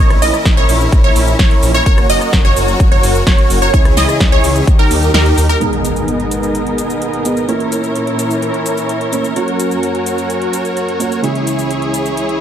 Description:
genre	EDM, festival progressive house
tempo	128 BPM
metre	4/4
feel	straight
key	G# minor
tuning	A4 = 435 Hz
part	dark studio string section	sustained chords	0.0-12.4 s	C#2 to A#4	-22 LUFS	left 2 dB	sidechain pumping
part	wide unison pluck	arpeggios	0.0-5.6 s	A#4 to D#5	-17 LUFS	right 2 dB	phaser, sidechain pumping, ping-pong delay
part	dense compressed supersaw	riff	0.0-12.4 s	B3 to D#5	-18 LUFS	right 1 dB	sidechain pumping, low-pass filter, ping-pong delay
part	wide detuned saw bass	bass	0.0-5.6 s	F#1 to D#2	-16 LUFS	equal	chorus, sidechain pumping
part	big-room dance drum kit	drums	0.1-12.4 s	hi-hat, rim click, shaker, snare drum	-21 LUFS	equal	none
part	electronic kick drum	drums	0.5-4.8 s	none	-11 LUFS	equal	none
part	dark concert grand piano	accompaniment	5.6-12.4 s	G#2 to C#5	-21 LUFS	right 3 dB	sidechain pumping, ping-pong delay
part	impact	sound effects	5.6-7.5 s	none	-24 LUFS	equal	none
room	digital ambience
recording	none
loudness	-11 LUFS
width	side -10 dB against mid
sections	0.0-5.6 A section; 5.6-12.4 B section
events	drop 0.0-5.6; kick drops out 5.1-5.6; impact 5.6-7.5; filter sweep on supersaw synth 5.6-12.4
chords	0.0 A#dim; 1.9 F#; 3.7 C#m; 4.7 D#; 5.6 G#madd9; 7.5 A#dim; 9.4 F#; 11.2 C#m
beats	0.46 0.92 1.39 | 1.86 2.33 2.80 3.27 | 3.74 4.21 4.67 5.14 | 5.61 6.08 6.55 7.02 | 7.49 7.96 8.42 8.89 | 9.36 9.83 10.30 10.77 | 11.24 11.71 12.17

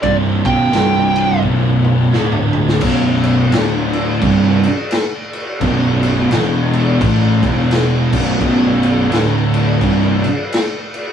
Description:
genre	stoner and doom metal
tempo	86 BPM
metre	4/4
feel	swing 60% on 8ths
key	B minor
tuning	A4 = 440 Hz
part	fuzz lead guitar	melody	0.0-1.4 s	D5 to G5	-16 LUFS	right 3 dB	distortion
part	thick fuzz guitar	riff	0.0-10.2 s	B1 to A3	-18 LUFS	left 5 dB	distortion
part	thick fuzz guitar	riff	0.0-10.2 s	B1 to A3	-16 LUFS	right 4 dB	distortion
part	fuzz fingered electric bass	bass	0.0-10.2 s	B0 to A1	-20 LUFS	left 1 dB	overdrive
part	raw garage drum kit	drums	0.0-11.1 s	crash cymbal, kick drum, ride cymbal, snare drum, toms	-20 LUFS	left 1 dB	none
room	moderate studio reverb, RT60 0.5 s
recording	rough rehearsal-room recording, small room ambience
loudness	-12 LUFS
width	side -8 dB against mid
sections	0.0-2.8 A section; 2.8-11.1 B section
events	drum fill 1.4-2.8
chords	0.0 B5; 0.7 C5; 1.4 B5; 2.1 D5; 2.8 B5; 3.5 D5; 4.2 B5; 6.3 E5; 7.0 A5; 7.4 E5; 8.1 B5; 9.1 D5; 9.8 N.C.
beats	| 0.03 0.73 1.43 2.13 | 2.83 3.53 4.22 4.92 | 5.62 6.32 7.01 7.71 | 8.41 9.11 9.81 10.51

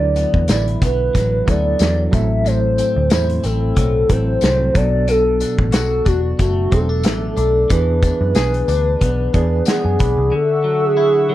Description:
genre	indie pop, bedroom pop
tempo	92 BPM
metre	4/4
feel	swing 55% on 16ths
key	unclear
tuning	A4 = 440 Hz
part	hollow clarinet-like synth lead	melody	0.0-11.3 s	F#4 to E5	-19 LUFS	equal	analog chorus, slapback echo
part	clean electric guitar	accompaniment	0.0-11.3 s	A2 to G#4	-24 LUFS	left 2 dB	wide subtle chorus, warbly pitch drift
part	reed electric piano	accompaniment	0.0-10.3 s	E3 to B5	-25 LUFS	right 4 dB	fast tremolo, cassette tape
part	vintage muted picked electric bass	bass	0.0-10.3 s	E1 to F#2	-19 LUFS	equal	none
part	loose indie drum kit	drums	0.2-10.2 s	hi-hat, kick drum, snare drum	-18 LUFS	equal	none
part	tambourine	percussion	0.2-10.2 s	none	-34 LUFS	left 13 dB	none
part	warm analog pad	sustained chords	10.3-11.3 s	E5 to E6	-25 LUFS	equal	chorus
room	light reverb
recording	none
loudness	-14 LUFS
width	side -14 dB against mid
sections	0.0-10.3 A section; 10.3-11.3 B section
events	reed electric piano fill 9.0-10.3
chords	0.0 D69; 2.1 Am6; 4.8 Bm7; 7.7 E7; 10.3 Dmaj9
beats	0.49 1.15 1.80 | 2.46 3.11 3.77 4.42 | 5.08 5.74 6.39 7.05 | 7.70 8.36 9.01 9.67 | 10.32 10.97

